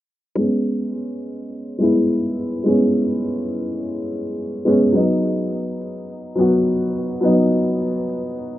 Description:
organic downtempo; 105 BPM; 4/4; swing 59% on 16ths; A4 = 440 Hz
felt-muted upright piano; accompaniment; 0.4-8.6 s; F#3 to F#4; -18 LUFS; equal; tape echo, plate reverb
shaker; drums; 0.4-8.6 s; -65 LUFS; right 1 dB
wet studio ambience, RT60 0.5 s; rough home demo mix, low-pass filter; -17 LUFS; side -14 dB against mid
0.4-8.6 A section
filter sweep 0.4-8.6
0.4 G#madd11; 4.9 B/F#
| 0.37 0.94 1.51 2.09 | 2.66 3.23 3.80 4.37 | 4.94 5.51 6.09 6.66 | 7.23 7.80 8.37

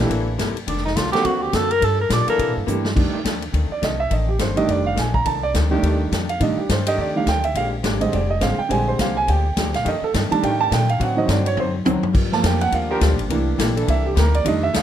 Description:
jazz, big band swing; 209 BPM; 4/4; swing 60% on 8ths; F mixolydian; A4 = 442 Hz
warm baby grand piano; accompaniment; 0.0-14.8 s; D3 to Bb5; -22 LUFS; right 4 dB
bright trombone section; sustained chords; 0.0-14.1 s; D3 to A4; -28 LUFS; equal
upright bass; bass; 0.0-14.8 s; F1 to C3; -22 LUFS; equal
swinging big-band drum kit; drums; 0.0-14.8 s; crash cymbal, hi-hat, kick drum, ride cymbal, snare drum, toms; -24 LUFS; equal
archtop guitar, miked and amplified; accompaniment; 0.1-14.8 s; F2 to D5; -28 LUFS; left 8 dB
breathy tenor saxophone; melody; 0.7-2.6 s; D4 to D5; -21 LUFS; equal
light reverb; close, detailed microphones; -17 LUFS; side -10 dB against mid
0.0-3.0 A section; 3.0-14.8 A section
tenor saxophone solo 0.0-3.0; drum fill 2.7, 11.6-12.1; grand piano solo 3.0-14.8
0.0 C13; 0.7 F6; 1.2 D7b13; 1.8 Gm7; 2.4 C13; 3.0 F13; 7.6 Bb13; 9.8 F13; 11.0 D7b9; 12.1 Gm7; 13.3 C13
0.10 0.38 | 0.67 0.95 1.24 1.53 | 1.81 2.10 2.39 2.67 | 2.96 3.25 3.53 3.82 | 4.11 4.39 4.68 4.97 | 5.26 5.54 5.83 6.12 | 6.40 6.69 6.98 7.26 | 7.55 7.84 8.13 8.41 | 8.70 8.99 9.27 9.56 | 9.85 10.13 10.42 10.71 | 11.00 11.29 11.57 11.86 | 12.15 12.44 12.72 13.01 | 13.30 13.59 13.88 14.16 | 14.45 14.74

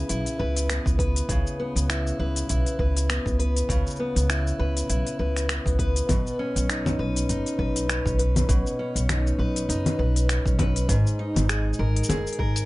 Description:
folktronica; 100 BPM; 4/4; swing 56% on 16ths; C# dorian; A4 = 440 Hz
picked steel-string acoustic guitar; arpeggios; 0.0-12.7 s; G#2 to B4; -28 LUFS; equal; ping-pong delay
upright bass; bass; 0.1-12.7 s; F#1 to C#2; -24 LUFS; equal
organic electronic drum kit; drums; 0.1-12.7 s; congas, finger snaps, hi-hat, shaker; -28 LUFS; left 1 dB
electronic kick drum; drums; 0.9-12.5 s; -26 LUFS; equal
little or no reverb; nothing above 10.6 kHz; -22 LUFS; side -19 dB against mid
0.0-12.7 A section
0.0 C#m7; 6.1 Badd9; 10.9 G#sus2
0.09 0.69 | 1.29 1.89 2.49 3.09 | 3.69 4.29 4.89 5.49 | 6.09 6.69 7.29 7.89 | 8.49 9.09 9.69 10.29 | 10.89 11.49 12.09

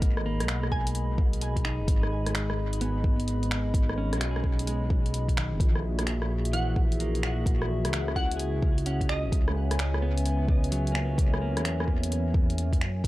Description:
future garage; 129 BPM; 4/4; swing 65% on 16ths; A4 = 440 Hz
semi-hollow electric guitar; accompaniment; 0.0-12.9 s; D#3 to G#4; -36 LUFS; right 2 dB; sidechain pumping, tape echo
dark analog pad; sustained chords; 0.0-13.1 s; G#3 to B5; -35 LUFS; left 1 dB; lush chorus, sidechain pumping
dark detuned saw bass; bass; 0.0-13.1 s; D#1 to F#2; -28 LUFS; equal; sidechain pumping
deep house drum kit; drums; 0.0-13.1 s; finger snaps, hi-hat, rim click; -34 LUFS; equal; dub echo
electronic kick drum; drums; 0.0-13.1 s; -25 LUFS; equal
glassy wavetable pluck; melody; 0.7-1.2, 6.5-9.4 s; D#5 to G#5; -38 LUFS; right 1 dB; chorus, dub echo
little or no reverb; echo-heavy mix; -24 LUFS; side -17 dB against mid
0.0-13.0 A section
0.0 G#m; 5.6 F#7/A#; 9.3 C#m
| 0.02 0.48 0.95 1.42 | 1.88 2.35 2.81 3.28 | 3.74 4.21 4.67 5.14 | 5.60 6.07 6.53 7.00 | 7.46 7.93 8.39 8.86 | 9.32 9.79 10.25 10.72 | 11.18 11.65 12.11 12.58 | 13.04

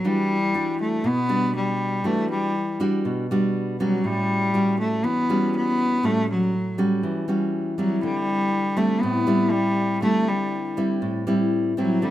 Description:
bossa nova; 120 BPM; 4/4; straight; A4 = 442 Hz
rich cello; melody; 0.0-12.1 s; F#3 to B3; -23 LUFS; equal
nylon-string guitar; accompaniment; 0.0-12.1 s; A2 to F#4; -23 LUFS; equal
light reverb; -20 LUFS; side -13 dB against mid
0.0-12.1 A section
0.0 Em9; 4.0 A13; 8.0 D9sus4
| 0.04 0.54 1.04 1.54 | 2.04 2.54 3.04 3.54 | 4.04 4.54 5.04 5.54 | 6.03 6.53 7.03 7.53 | 8.03 8.53 9.03 9.53 | 10.02 10.52 11.02 11.52 | 12.02

